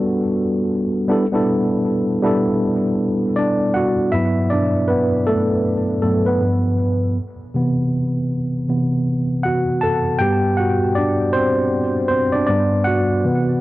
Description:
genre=hip hop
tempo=79 BPM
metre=4/4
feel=swing 64% on 16ths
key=G major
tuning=A4 = 439 Hz
part: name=tine electric piano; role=solo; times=0.0-13.6 s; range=G2 to A5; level=-16 LUFS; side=equal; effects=medium stereo tremolo, cassette tape, low-pass filter, analog delay
room=moderate studio reverb, RT60 0.6 s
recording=worn, warbling old tape, cassette tape, warbly pitch drift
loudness=-16 LUFS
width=side -17 dB against mid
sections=0.0-4.1 A section; 4.1-13.6 B section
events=tine electric piano solo 4.1-13.6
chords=0.0 Gmaj7; 1.1 G69; 6.4 G7; 7.2 Cmaj7; 10.2 Gmaj7; 12.5 G

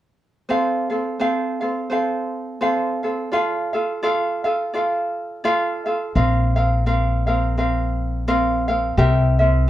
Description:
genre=Hawaiian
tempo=85 BPM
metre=4/4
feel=swing 58% on 8ths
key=F major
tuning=A4 = 435 Hz
part: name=ukulele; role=accompaniment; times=0.5-9.7 s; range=C4 to F5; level=-20 LUFS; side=equal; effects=none
part: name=upright bass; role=bass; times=6.2-9.7 s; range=Bb1 to C2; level=-19 LUFS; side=equal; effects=none
room=moderate studio reverb, RT60 0.6 s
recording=dark, warm production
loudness=-18 LUFS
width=side -13 dB against mid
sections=0.5-9.7 A section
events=none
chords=0.5 F; 3.3 Dm; 6.2 Bbsus2; 9.0 C7

